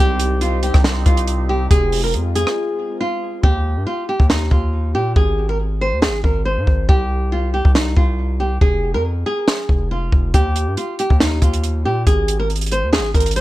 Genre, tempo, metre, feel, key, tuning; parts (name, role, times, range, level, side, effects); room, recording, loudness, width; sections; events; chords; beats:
hip hop, trap; 139 BPM; 4/4; half-time; Eb major; A4 = 435 Hz
flamenco guitar; melody; 0.0-13.4 s; Eb4 to C5; -21 LUFS; equal; low-pass filter, tape echo
sweeping resonant pad; sustained chords; 0.0-3.4 s; C3 to G4; -27 LUFS; equal; chorus, phaser
hard-hitting 808-style bass; bass; 0.0-13.4 s; F1 to Bb2; -20 LUFS; equal
compact cocktail drum kit; drums; 0.2-13.4 s; hi-hat, kick drum, rim click, snare drum; -15 LUFS; equal
little or no reverb; -15 LUFS; side -16 dB against mid
0.0-3.4 A section; 3.4-13.4 B section
break 2.6-3.4; hi-hats muted 3.4-10.3
0.0 Cm; 1.7 Fm; 3.4 Eb; 5.2 Ab; 6.9 C5; 8.6 Fm; 10.3 Eb; 12.1 Ab5
0.41 0.84 1.27 | 1.71 2.14 2.57 3.00 | 3.43 3.87 4.30 4.73 | 5.16 5.59 6.02 6.46 | 6.89 7.32 7.75 8.18 | 8.61 9.04 9.48 9.91 | 10.34 10.77 11.20 11.63 | 12.07 12.50 12.93 13.36